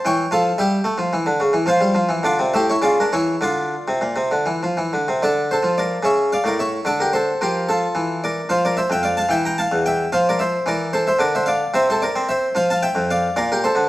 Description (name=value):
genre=classical, baroque-style suite movement for harpsichord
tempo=73 BPM (dotted quarters)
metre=6/8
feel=rubato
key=D minor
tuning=A4 = 440 Hz
part: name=harpsichord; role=solo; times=0.0-13.9 s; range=E2 to Bb5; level=-17 LUFS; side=equal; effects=none
room=light reverb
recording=close, detailed microphones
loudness=-17 LUFS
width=side -16 dB against mid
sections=0.0-5.2 A section; 5.2-13.9 B section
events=none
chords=0.0 A7/E; 1.7 Dm/F; 2.5 A7; 3.4 Dm; 6.0 A/C#; 6.9 Dm; 8.5 F5; 9.3 Emadd11; 10.1 F; 11.7 C13; 12.5 F5; 13.3 Bbmaj7